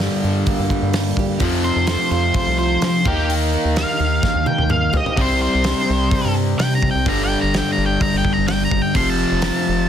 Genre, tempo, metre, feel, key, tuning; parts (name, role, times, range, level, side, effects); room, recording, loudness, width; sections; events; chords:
quiet-loud alternative rock; 128 BPM; 4/4; straight; A4 = 440 Hz
picked steel-string acoustic guitar; arpeggios; 0.0-5.2 s; G2 to A4; -27 LUFS; right 10 dB
overdriven semi-hollow guitar; riff; 0.0-9.9 s; F2 to Eb4; -20 LUFS; left 1 dB
rubbery square bass; bass; 0.0-9.9 s; F1 to F3; -22 LUFS; equal
loose indie drum kit; drums; 0.0-9.5 s; hi-hat, kick drum, snare drum, toms; -23 LUFS; equal
octave-fuzz lead guitar; melody; 1.6-9.9 s; G4 to C6; -22 LUFS; left 1 dB; distortion, analog delay
light reverb, studio reverb; dense, heavily limited modern master; -16 LUFS; side -9 dB against mid
0.0-9.9 A section
lead electric guitar solo 0.0-9.9; drum fill 4.2-5.2
0.0 Gm; 1.4 F; 3.1 Eb; 5.2 C5; 7.1 G5; 8.9 F